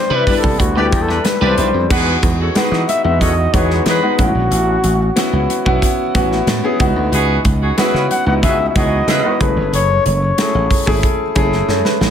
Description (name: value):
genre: polished 1980s jazz-funk pop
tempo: 92 BPM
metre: 4/4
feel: straight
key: E major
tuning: A4 = 442 Hz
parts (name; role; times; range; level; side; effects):
- mellow flugelhorn; melody; 0.0-11.0 s; F#4 to F#5; -18 LUFS; left 3 dB; ping-pong delay
- warm grand piano; accompaniment; 0.0-12.1 s; G3 to C#5; -18 LUFS; left 1 dB; lush chorus
- electric guitar at the edge of break-up; riff; 0.1-1.8 s; D4 to B4; -24 LUFS; right 6 dB; analog chorus
- slap bass; bass; 0.1-12.1 s; F#1 to E3; -18 LUFS; right 1 dB; none
- mellow horn section; second line; 0.3-9.3 s; B3 to E5; -22 LUFS; right 2 dB; none
- modern studio drum kit; drums; 0.3-12.1 s; crash cymbal, hi-hat, kick drum, snare drum; -18 LUFS; equal; none
- congas; percussion; 0.3-12.1 s; none; -30 LUFS; right 4 dB; none
room: moderate plate reverb, RT60 1.4 s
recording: dreamy mix soaked in reverb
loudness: -12 LUFS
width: side -8 dB against mid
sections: 0.0-1.9 A section; 1.9-12.1 B section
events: band accent 0.0-1.9; flugelhorn solo 0.0-1.9; drum fill 11.7-12.1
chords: 0.0 Cmaj9; 1.9 Emaj9; 4.2 A6; 6.8 C#m11; 9.4 F#m9